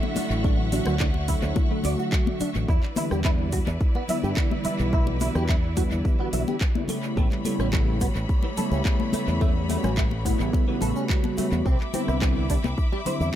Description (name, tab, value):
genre	nu-disco, nu disco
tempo	107 BPM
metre	4/4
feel	straight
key	unclear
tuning	A4 = 439 Hz
part	mellow synth brass	accompaniment	0.0-13.4 s	C#3 to C#5	-28 LUFS	equal	chorus, tape echo
part	clear studio string section	sustained chords	0.0-13.4 s	D3 to D6	-35 LUFS	left 1 dB	sidechain pumping
part	congas and egg shaker	percussion	0.0-13.3 s	none	-33 LUFS	left 4 dB	tape echo
part	direct-recorded clean electric guitar	riff	0.2-13.3 s	E3 to E5	-32 LUFS	right 2 dB	ensemble chorus, tape echo
part	fingered electric bass with an envelope filter	bass	0.2-13.3 s	A1 to G2	-27 LUFS	equal	sidechain pumping
part	house drum kit	drums	0.2-13.2 s	handclaps, hi-hat, rim click	-34 LUFS	right 1 dB	tape echo
part	electronic kick drum	drums	0.4-12.9 s	none	-24 LUFS	equal	none
room	little or no reverb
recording	echo-heavy mix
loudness	-22 LUFS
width	side -11 dB against mid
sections	0.0-13.4 A section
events	none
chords	0.0 Dmaj9; 2.7 Em7; 6.9 A9; 11.7 Cmaj9